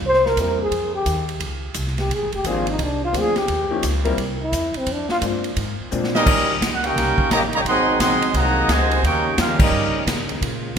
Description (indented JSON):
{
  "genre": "jazz, big band swing",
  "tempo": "173 BPM",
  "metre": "4/4",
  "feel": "swing 63% on 8ths",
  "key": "Eb major from 6.3 s",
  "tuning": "A4 = 440 Hz",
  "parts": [
    { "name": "upright bass", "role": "bass", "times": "0.0-10.8 s", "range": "F1 to Bb2", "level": "-26 LUFS", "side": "equal", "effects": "none" },
    { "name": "swinging big-band drum kit", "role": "drums", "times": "0.0-10.8 s", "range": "crash cymbal, hi-hat, kick drum, ride cymbal, snare drum", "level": "-24 LUFS", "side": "equal", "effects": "none" },
    { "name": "breathy trombone", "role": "melody", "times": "0.1-5.2 s", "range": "C4 to C5", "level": "-22 LUFS", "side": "equal", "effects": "none" },
    { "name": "warm grand piano", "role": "accompaniment", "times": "0.4-6.1 s", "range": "F3 to Bb4", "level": "-27 LUFS", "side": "left 4 dB", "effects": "none" },
    { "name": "clear trumpet section", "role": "melody", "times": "6.1-10.1 s", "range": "Db4 to C6", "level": "-20 LUFS", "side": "right 1 dB", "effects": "none" },
    { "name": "warm trombone section", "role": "second line", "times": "6.1-10.0 s", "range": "C3 to G4", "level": "-25 LUFS", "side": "right 2 dB", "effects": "none" },
    { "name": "warm trombone section", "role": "sustained chords", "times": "6.3-10.8 s", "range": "C3 to F4", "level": "-30 LUFS", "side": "left 1 dB", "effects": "none" }
  ],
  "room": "moderate concert hall reverb, RT60 2.2 s",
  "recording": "minimal, uncompressed stereo recording",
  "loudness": "-18 LUFS",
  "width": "side -7 dB against mid",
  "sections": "0.0-6.3 A section; 6.3-10.8 B section",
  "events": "trombone solo 0.0-6.3; drum fill 5.9-6.3; band accent 9.5",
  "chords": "0.0 C7; 0.7 F5; 2.1 Bb7; 3.5 Eb7; 4.2 C; 4.9 Bb7; 6.3 Eb7; 7.6 Ab7; 9.0 Eb7"
}